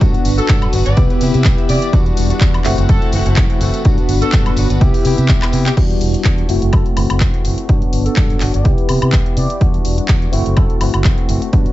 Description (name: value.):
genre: filtered disco house.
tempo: 125 BPM.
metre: 4/4.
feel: swing 55% on 16ths.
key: unclear.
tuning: A4 = 441 Hz.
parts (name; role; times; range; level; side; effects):
tine electric piano; accompaniment; 0.0-11.7 s; G3 to G4; -21 LUFS; equal; medium stereo tremolo, phaser, sidechain pumping, low-pass filter.
string machine, full ensemble; sustained chords; 0.0-5.8 s; G3 to F#5; -28 LUFS; left 1 dB; ensemble chorus, sidechain pumping, low-pass filter.
direct-recorded clean electric guitar; riff; 0.0-11.7 s; E3 to G4; -26 LUFS; left 3 dB; sidechain pumping, low-pass filter.
fingered electric bass; bass; 0.0-11.7 s; E1 to C3; -17 LUFS; equal; sidechain pumping, low-pass filter.
electronic kick drum; drums; 0.0-11.6 s; none; -14 LUFS; equal; studio ambience.
house drum kit; drums; 0.0-11.7 s; crash cymbal, handclaps, hi-hat, woodblock; -24 LUFS; left 1 dB; sidechain pumping on hats, studio ambience, sidechain pumping on perc, sidechain pumping on cymbals.
tambourine; percussion; 0.0-11.7 s; none; -34 LUFS; left 4 dB; sidechain pumping on perc, low-pass filter on perc.
mellow horn section; melody; 0.4-10.8 s; G4 to D5; -26 LUFS; equal; sidechain pumping, low-pass filter, dub echo.
room: digital ambience.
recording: nothing above 7.7 kHz.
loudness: -12 LUFS.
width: side -16 dB against mid.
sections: 0.0-5.8 A section; 5.8-11.7 B section.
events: drop 0.0-5.8; drum fill 5.4-5.8; filter sweep 5.8-11.7.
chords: 0.0 Gmaj7; 1.0 Cmaj7; 1.9 Em9; 2.7 F#m7b5; 3.9 Gmaj7; 4.8 Cmaj7; 5.8 Em9; 6.5 F#m7b5; 7.7 Gmaj7; 8.7 Cmaj7; 9.6 Em9; 10.3 F#m7b5.